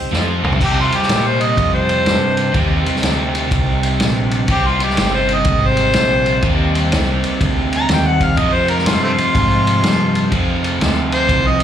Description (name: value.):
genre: blues rock power trio and southern rock.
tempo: 124 BPM.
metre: 4/4.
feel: swing 65% on 8ths.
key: C minor.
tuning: A4 = 440 Hz.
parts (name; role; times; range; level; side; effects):
warm harmonica; melody; 0.0-11.6 s; A3 to Bb5; -18 LUFS; equal; overdrive, slapback echo.
bright tonewheel organ; sustained chords; 0.0-11.6 s; Bb3 to Db5; -29 LUFS; right 3 dB; none.
distorted electric guitar; riff; 0.1-11.6 s; F2 to F4; -19 LUFS; right 1 dB; distortion, slapback echo.
growling picked electric bass; bass; 0.1-11.6 s; G1 to C3; -19 LUFS; equal; overdrive.
vintage drum kit; drums; 0.1-11.6 s; crash cymbal, kick drum, ride cymbal, snare drum, toms; -20 LUFS; equal; none.
room: little or no reverb.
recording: live gig heard through the venue's PA, club reverb.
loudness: -13 LUFS.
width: side -9 dB against mid.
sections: 0.6-11.6 A section.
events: drum fill 0.1-0.6; harmonica solo 0.6-11.6.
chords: 0.0 Cm; 0.6 Cm7; 8.4 Fm7.